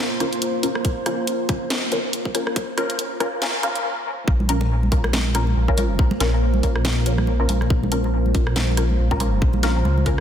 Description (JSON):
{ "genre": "deep dubstep", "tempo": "140 BPM", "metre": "4/4", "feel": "swing 57% on 16ths, half-time", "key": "Bb minor", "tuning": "A4 = 440 Hz", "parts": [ { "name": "deep dark ambient pad", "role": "sustained chords", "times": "0.0-10.2 s", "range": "Bb3 to C5", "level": "-28 LUFS", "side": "right 1 dB", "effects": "chorus, built-in reverb" }, { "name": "filtered dub chord stab", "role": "stabs", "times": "0.0-10.2 s", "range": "Db4 to Bb4", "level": "-26 LUFS", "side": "left 2 dB", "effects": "phaser, ensemble chorus, dub echo" }, { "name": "garage drum kit", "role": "drums", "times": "0.2-10.2 s", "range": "hi-hat, rim click, snare drum", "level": "-26 LUFS", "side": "equal", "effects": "studio reverb" }, { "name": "electronic kick drum", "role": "drums", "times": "0.8-10.2 s", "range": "none", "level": "-20 LUFS", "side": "equal", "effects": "studio reverb" }, { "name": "dark detuned saw bass", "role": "bass", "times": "4.3-10.2 s", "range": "Bb1 to Db2", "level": "-20 LUFS", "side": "equal", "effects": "none" }, { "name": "congas", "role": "percussion", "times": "4.3-10.0 s", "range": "none", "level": "-29 LUFS", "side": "right 3 dB", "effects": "dub echo" } ], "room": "moderate echo chamber reverb, RT60 2.1 s", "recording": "dense, heavily limited modern master, high-pass filter", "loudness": "-18 LUFS", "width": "side -9 dB against mid", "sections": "0.0-4.3 A section; 4.3-10.2 B section", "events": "build-up 0.0-4.3; stop 3.8-4.3; drop 4.3-10.2", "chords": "0.0 Bbm" }